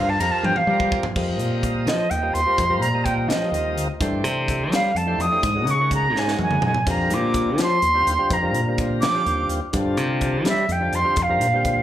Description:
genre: electric jazz fusion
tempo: 84 BPM (dotted quarters)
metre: 6/8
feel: straight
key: unclear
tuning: A4 = 440 Hz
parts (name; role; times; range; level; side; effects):
- jazz flute; melody; 0.0-11.8 s; Eb5 to Eb6; -21 LUFS; right 1 dB; slapback echo
- tonewheel organ; accompaniment; 0.0-11.8 s; D3 to F5; -27 LUFS; equal; slow rotary speaker, slapback echo
- lush unison pad; sustained chords; 0.0-1.1 s; G3 to C5; -39 LUFS; left 1 dB; none
- modern bright fingered electric bass; bass; 0.0-11.8 s; D2 to G3; -24 LUFS; equal; none
- crisp fusion drum kit; drums; 0.2-11.8 s; crash cymbal, hi-hat, kick drum, ride cymbal, snare drum, splash cymbal, toms; -27 LUFS; left 1 dB; none
room: light reverb, small room ambience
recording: live gig heard through the venue's PA, club reverb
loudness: -18 LUFS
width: side -12 dB against mid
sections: 0.0-1.2 A section; 1.2-11.8 B section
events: flute solo 0.0-1.2; drum fill 0.4-1.2, 6.2-6.9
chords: 0.0 Gm7; 1.2 F9sus4; 4.0 G13sus4; 5.4 Ab9sus4; 6.9 F13sus4; 9.7 G9sus4; 11.2 Fsus4

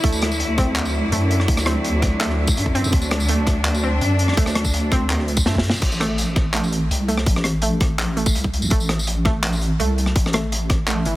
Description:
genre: half-time drum and bass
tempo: 166 BPM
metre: 4/4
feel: half-time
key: A dorian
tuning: A4 = 439 Hz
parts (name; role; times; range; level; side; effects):
- bright studio cello section; sustained chords; 0.0-5.8 s; D3 to E4; -26 LUFS; left 1 dB; sidechain pumping
- warbly dusty pluck; arpeggios; 0.0-11.2 s; E3 to C4; -27 LUFS; right 2 dB; chorus, dub echo
- deep soft wobble bass; bass; 0.0-11.2 s; G1 to F#2; -21 LUFS; equal; chorus
- crunchy breakbeat drum kit; drums; 0.0-11.1 s; crash cymbal, handclaps, hi-hat, rim click, snare drum, tambourine; -24 LUFS; equal; none
- electronic kick drum; drums; 0.0-10.8 s; none; -19 LUFS; equal; none
room: small room ambience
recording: heavily compressed radio sound, faint mains hum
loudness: -17 LUFS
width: side -16 dB against mid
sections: 0.0-5.8 A section; 5.8-11.2 A section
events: drop 0.0-5.8, 5.8-11.2; drum fill 5.5-5.8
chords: 0.0 Dadd9; 5.8 Am

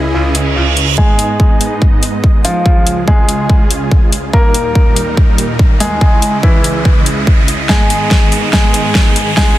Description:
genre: heavy wobble dubstep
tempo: 143 BPM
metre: 4/4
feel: half-time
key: unclear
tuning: A4 = 440 Hz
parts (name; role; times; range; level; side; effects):
- warm grand piano; melody; 0.0-9.6 s; E3 to A#4; -17 LUFS; equal; low-pass filter, dub echo
- supersaw chords; sustained chords; 0.0-9.6 s; C#2 to D#5; -18 LUFS; right 2 dB; sidechain pumping, low-pass filter
- metallic wobble bass; bass; 0.0-1.0 s; C#2; -14 LUFS; equal; chorus, overdrive
- reverse cymbal and riser; sound effects; 0.3-9.6 s; none; -21 LUFS; right 4 dB; none
- dubstep drum kit; drums; 0.3-9.5 s; hi-hat, snare drum; -16 LUFS; left 1 dB; none
- electronic kick drum; drums; 1.0-9.5 s; none; -10 LUFS; equal; overdrive
room: digital ambience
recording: dense, heavily limited modern master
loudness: -9 LUFS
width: side -14 dB against mid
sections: 1.0-9.6 A section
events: reverse cymbal 0.3-1.0; build-up 1.0-9.6; riser 1.0-9.6; filter sweep on supersaw synth 1.0-9.6; drum fill 7.7-9.6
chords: 0.0 C#madd9; 1.0 G#m; 2.7 C#; 4.3 D#; 6.0 C#madd9; 7.7 G#m

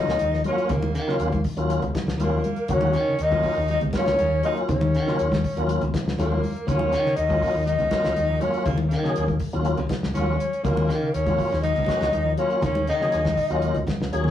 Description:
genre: afrobeat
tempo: 121 BPM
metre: 4/4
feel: straight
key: Eb minor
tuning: A4 = 439 Hz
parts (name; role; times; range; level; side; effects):
- mellow polished pan flute; melody; 0.0-13.8 s; Bb4 to Eb5; -25 LUFS; left 1 dB; slapback echo
- edgy tenor saxophone; second line; 0.0-13.8 s; Bb3 to Eb4; -34 LUFS; right 3 dB; none
- tonewheel organ; accompaniment; 0.0-14.3 s; Gb3 to Ab4; -27 LUFS; left 1 dB; slow rotary speaker, chorus vibrato
- modern bright fingered electric bass; bass; 0.1-14.3 s; Db2 to Eb3; -26 LUFS; left 1 dB; none
- damped 70s drum kit; drums; 0.1-14.3 s; hi-hat, kick drum, snare drum; -29 LUFS; equal; none
- congas; percussion; 0.2-14.3 s; none; -31 LUFS; equal; none
- semi-hollow electric guitar; arpeggios; 0.3-14.3 s; Db3 to Gb3; -31 LUFS; left 4 dB; none
room: moderate studio reverb, RT60 0.6 s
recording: rough rehearsal-room recording, tube saturation, small room ambience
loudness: -20 LUFS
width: side -11 dB against mid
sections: 0.0-14.3 A section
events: drum fill 13.9-14.3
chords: 0.0 Ebm7

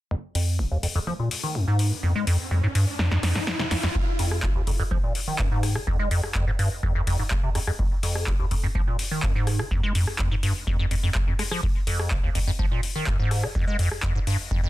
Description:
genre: acid house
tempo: 125 BPM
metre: 4/4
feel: straight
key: F minor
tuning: A4 = 440 Hz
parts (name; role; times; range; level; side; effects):
- liquid acid bass; riff; 0.1-14.7 s; F1 to Ab3; -25 LUFS; equal; phaser, overdrive, tape echo
- electronic kick drum; drums; 0.1-14.6 s; none; -26 LUFS; equal; high-pass filter on kick, high-pass filter on room
- riser; sound effects; 1.0-4.0 s; none; -34 LUFS; equal; none
- electro analog drum machine; drums; 0.4-14.4 s; handclaps, hi-hat, rim click, snare drum; -31 LUFS; left 1 dB; none
room: light reverb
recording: dense, heavily limited modern master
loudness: -22 LUFS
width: side -16 dB against mid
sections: 0.1-4.0 A section; 4.0-14.7 B section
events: filter sweep on acid bass 0.1-4.0, 4.0-14.7; riser 1.0-4.0; drum fill 3.0-4.0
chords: none

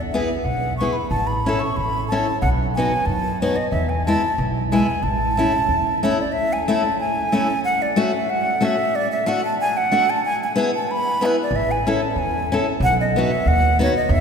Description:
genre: alpine folk, alpine dance band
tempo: 92 BPM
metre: 2/4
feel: straight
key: A major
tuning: A4 = 439 Hz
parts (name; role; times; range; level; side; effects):
- upright bass; bass; 0.0-6.1, 11.5-14.2 s; A1 to F#2; -24 LUFS; right 1 dB; none
- jazz flute; melody; 0.1-14.2 s; B4 to C#6; -21 LUFS; equal; none
- picked steel-string acoustic guitar; accompaniment; 0.1-13.9 s; G#3 to A4; -22 LUFS; left 2 dB; none
room: wet cathedral reverb, RT60 4.9 s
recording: recorded in a church or concert hall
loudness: -18 LUFS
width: side -6 dB against mid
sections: 0.0-6.3 A section; 6.3-14.2 A section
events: none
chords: 0.0 E; 1.1 A; 2.4 B; 3.7 E; 5.0 A; 7.6 F#m; 8.9 D; 10.2 E; 11.5 A; 12.8 B

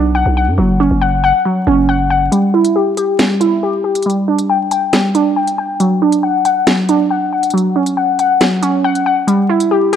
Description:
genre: hip hop, drill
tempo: 138 BPM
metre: 4/4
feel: half-time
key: unclear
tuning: A4 = 443 Hz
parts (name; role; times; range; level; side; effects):
- warbly dusty pluck; accompaniment; 0.0-10.0 s; F#3 to G5; -12 LUFS; equal; chorus, low-pass filter
- growling 808-style bass; bass; 0.0-2.3 s; F#1 to F#2; -16 LUFS; equal; none
- drill drum kit; drums; 2.3-10.0 s; finger snaps, hi-hat, snare drum; -17 LUFS; right 1 dB; none
room: light reverb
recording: dry, gritty hardware recording, vinyl crackle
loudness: -11 LUFS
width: side -9 dB against mid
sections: 0.0-2.3 A section; 2.3-10.0 B section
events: kick muted 2.3-9.3, 9.3-10.0; filter sweep on synth pluck 2.3-9.3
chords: 0.0 Bm; 0.6 F#5; 2.3 Em; 4.1 G5; 5.8 D/F#; 7.5 F#5; 9.3 Em

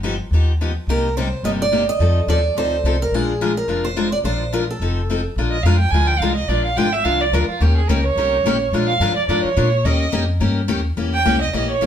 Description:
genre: acoustic string swing (jazz manouche)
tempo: 214 BPM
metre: 4/4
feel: swing 58% on 8ths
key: Bb mixolydian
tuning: A4 = 440 Hz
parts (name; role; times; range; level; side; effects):
- picked steel-string acoustic guitar; accompaniment; 0.0-11.9 s; C3 to Bb4; -22 LUFS; left 4 dB; none
- upright bass; bass; 0.0-11.9 s; F1 to Bb2; -20 LUFS; equal; none
- picked steel-string acoustic guitar; melody; 0.9-5.2 s; Ab4 to Eb5; -22 LUFS; right 2 dB; none
- rich violin; second line; 5.5-11.9 s; F4 to Ab5; -20 LUFS; right 4 dB; none
room: wet studio reverb, RT60 0.6 s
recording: band playing live in one room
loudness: -16 LUFS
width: side -9 dB against mid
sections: 0.0-5.4 A section; 5.4-11.9 B section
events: violin solo 5.4-11.9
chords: 0.0 Gaug7; 0.9 Cm7; 2.0 F7; 3.1 Bb7; 4.8 F7; 5.4 Bb7; 7.6 Eb7; 8.7 Bb7; 9.8 Eb7; 11.0 Edim7

